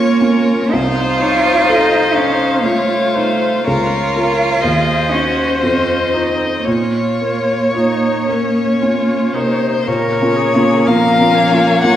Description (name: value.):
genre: classical, slow romantic movement for piano quintet.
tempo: 55-64 BPM.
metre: 3/4.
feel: rubato.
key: Bb minor.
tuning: A4 = 439 Hz.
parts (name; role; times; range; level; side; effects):
rich violin; melody; 0.0-12.0 s; Bb4 to Gb5; -19 LUFS; left 3 dB; none.
rich cello; second line; 0.0-12.0 s; C3 to F4; -17 LUFS; right 2 dB; none.
rich violin; second line; 0.0-12.0 s; Bb3 to Db5; -20 LUFS; left 2 dB; none.
clear viola; accompaniment; 0.0-12.0 s; Db4 to Db5; -23 LUFS; right 1 dB; none.
warm baby grand piano; accompaniment; 0.0-12.0 s; C2 to Eb5; -18 LUFS; equal; none.
room: wet scoring stage reverb, RT60 1.6 s.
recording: recorded in a church or concert hall, vinyl crackle.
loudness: -12 LUFS.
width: side -11 dB against mid.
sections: 0.0-9.9 A section; 9.9-12.0 B section.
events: none.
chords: 0.0 Bbm/Db; 0.7 F7/C; 3.7 Bbm/Db; 4.6 Cdim/Eb; 5.6 F5; 6.7 Bbm.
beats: | 0.73 1.69 2.64 | 3.66 4.62 5.62 | 6.66 7.74 8.81 | 9.87 10.87 11.83.